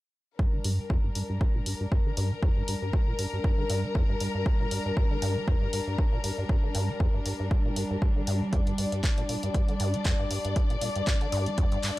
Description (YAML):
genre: acid house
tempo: 118 BPM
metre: 4/4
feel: swing 55% on 16ths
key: G minor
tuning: A4 = 440 Hz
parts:
  - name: dark studio string section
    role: sustained chords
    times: 0.4-12.0 s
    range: G3 to D5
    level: -32 LUFS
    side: left 2 dB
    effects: sidechain pumping
  - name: acid bass, saw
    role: riff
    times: 0.4-11.9 s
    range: F2 to G3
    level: -31 LUFS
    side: equal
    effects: overdrive, wide subtle chorus
  - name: electronic kick drum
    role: drums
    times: 0.4-11.7 s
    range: none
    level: -26 LUFS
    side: equal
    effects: none
  - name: punchy analog drum machine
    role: drums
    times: 0.6-11.9 s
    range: handclaps, hi-hat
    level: -35 LUFS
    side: equal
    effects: none
room: light reverb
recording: dry, gritty hardware recording, transformer saturation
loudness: -25 LUFS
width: side -18 dB against mid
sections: 0.4-12.0 A section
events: filter sweep on acid bass 0.4-12.0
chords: 0.4 Gm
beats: | 0.39 0.90 1.41 1.92 | 2.42 2.93 3.44 3.95 | 4.46 4.97 5.48 5.99 | 6.49 7.00 7.51 8.02 | 8.53 9.04 9.54 10.05 | 10.56 11.07 11.58